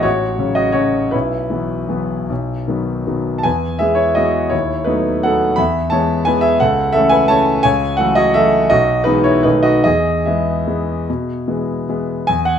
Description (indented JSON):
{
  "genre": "classical, piano waltz",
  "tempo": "141-185 BPM",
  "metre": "3/4",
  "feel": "rubato",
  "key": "E major",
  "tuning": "A4 = 440 Hz",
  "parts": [
    { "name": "clear concert grand piano", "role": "solo", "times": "0.0-12.6 s", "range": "A1 to B5", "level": "-14 LUFS", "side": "equal", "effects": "none" }
  ],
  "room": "moderate large studio reverb, RT60 0.9 s",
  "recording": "none",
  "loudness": "-14 LUFS",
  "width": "side -8 dB against mid",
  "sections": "0.0-12.3 A section",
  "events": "none",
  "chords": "0.0 F#m/A; 1.1 Bsus4; 2.3 B; 3.5 E; 4.5 B7/D#; 5.6 E; 6.6 A/C#; 7.6 F#m7/C#; 8.7 E/B; 9.4 B7; 9.8 E"
}